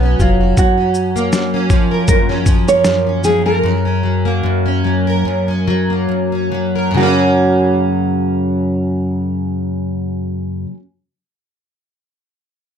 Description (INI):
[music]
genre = acoustic pop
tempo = 68-80 BPM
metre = 4/4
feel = swing 55% on 16ths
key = F# major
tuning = A4 = 440 Hz
[part]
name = nylon-string guitar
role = melody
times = 0.0-10.7 s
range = E#4 to C#5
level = -17 LUFS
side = right 3 dB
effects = none
[part]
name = picked plugged-in steel-string acoustic guitar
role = accompaniment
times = 0.0-10.8 s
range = F#2 to A#4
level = -15 LUFS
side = equal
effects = double-tracked left and right
[part]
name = organ-like FM bass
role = bass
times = 0.0-0.5 s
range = E#1 to B1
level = -14 LUFS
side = equal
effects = none
[part]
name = dusty soul sampler-style drum kit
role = drums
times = 0.2-3.4 s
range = kick drum, shaker, snare drum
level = -15 LUFS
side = equal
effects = none
[sound]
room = moderate studio ambience, RT60 0.5 s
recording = none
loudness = -13 LUFS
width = side -8 dB against mid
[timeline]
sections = 0.0-7.0 A section; 7.0-10.5 B section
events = slowing down 0.6-7.0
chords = 0.0 Bsus2; 0.6 F#maj7; 3.6 F#